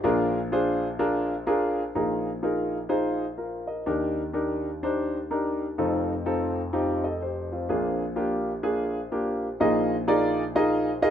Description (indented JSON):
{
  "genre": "gospel",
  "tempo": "126 BPM",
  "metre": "4/4",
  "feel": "swing 64% on 8ths",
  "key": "unclear",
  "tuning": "A4 = 440 Hz",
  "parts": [
    { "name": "warm grand piano", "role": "solo", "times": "0.0-11.1 s", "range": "F1 to Eb5", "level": "-24 LUFS", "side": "equal", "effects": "none" }
  ],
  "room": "light reverb, studio ambience",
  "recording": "rough home demo mix",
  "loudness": "-24 LUFS",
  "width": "side -9 dB against mid",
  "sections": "0.0-1.9 A section; 1.9-9.6 B section; 9.6-11.1 A section",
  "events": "none",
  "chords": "0.0 Bb7; 1.9 Bb7sus4; 3.9 Ebmaj7; 5.8 F7; 7.7 Bb7; 9.6 Bb7sus4"
}